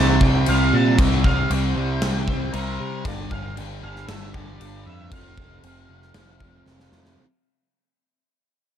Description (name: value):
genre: rock, shoegaze and dream pop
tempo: 116 BPM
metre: 4/4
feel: straight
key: unclear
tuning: A4 = 445 Hz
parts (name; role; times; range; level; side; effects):
- octave-fuzz lead guitar; melody; 0.0-6.6 s; Bb4 to A5; -30 LUFS; right 1 dB; distortion, slapback echo
- fuzz guitar; riff; 0.0-7.2 s; F2 to C4; -24 LUFS; right 2 dB; distortion, lush chorus
- growling picked electric bass; bass; 0.0-7.2 s; F1 to C3; -24 LUFS; equal; overdrive
- gated 80s drum kit; drums; 0.2-7.2 s; crash cymbal, kick drum, snare drum; -24 LUFS; equal; none
room: small room reverb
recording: dark, warm production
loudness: -18 LUFS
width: side -9 dB against mid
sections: 0.0-7.2 A section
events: fade-out 0.0-7.2; drum fill 6.7-7.2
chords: 0.0 C5; 3.0 G5; 5.1 F5